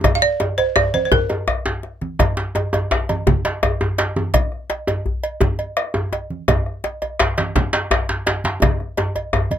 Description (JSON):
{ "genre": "west african traditional, West African drum ensemble", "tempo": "112 BPM (dotted quarters)", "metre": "12/8", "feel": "straight", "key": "Bb major pentatonic", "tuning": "A4 = 436 Hz", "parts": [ { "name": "bombo", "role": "percussion", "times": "0.0-9.5 s", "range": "none", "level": "-21 LUFS", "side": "left 1 dB", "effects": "none" }, { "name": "congas", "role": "percussion", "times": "0.0-9.6 s", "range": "none", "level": "-23 LUFS", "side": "right 4 dB", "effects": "none" }, { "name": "cowbell", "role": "percussion", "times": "0.0-9.6 s", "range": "none", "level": "-25 LUFS", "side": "right 2 dB", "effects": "none" }, { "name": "djembe", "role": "percussion", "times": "0.0-9.5 s", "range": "none", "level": "-25 LUFS", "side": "left 3 dB", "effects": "none" }, { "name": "djembe", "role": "percussion", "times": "0.0-9.5 s", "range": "none", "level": "-21 LUFS", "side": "equal", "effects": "none" }, { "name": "balafon", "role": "melody", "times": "0.2-1.8 s", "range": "Bb4 to F5", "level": "-17 LUFS", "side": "right 3 dB", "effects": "none" } ], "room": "light reverb", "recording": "none", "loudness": "-18 LUFS", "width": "side -10 dB against mid", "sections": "0.0-2.2 A section; 2.2-9.6 B section", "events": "drum fill 0.0-2.2, 8.6-9.6", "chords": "none" }